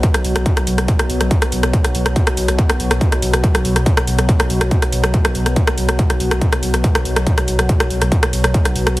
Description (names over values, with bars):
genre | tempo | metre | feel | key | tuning
driving peak-time techno | 141 BPM | 4/4 | straight | unclear | A4 = 443 Hz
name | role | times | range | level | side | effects
saturated sub bass | bass | 0.0-9.0 s | B1 | -20 LUFS | equal | tube saturation, sidechain pumping, low-pass filter
analog drone | drone | 0.0-9.0 s | B2 to F#3 | -22 LUFS | equal | chorus, sidechain pumping
electronic kick drum | drums | 0.0-8.6 s | none | -17 LUFS | equal | distortion, overdrive, small room reverb
techno drum kit | drums | 0.0-9.0 s | hi-hat, rim click | -19 LUFS | equal | overdrive, sidechain pumping on hats, small room reverb, sidechain pumping on cymbals
room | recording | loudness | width
light reverb | heavily compressed radio sound | -14 LUFS | side -18 dB against mid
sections
0.0-9.0 A section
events
none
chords
0.0 B5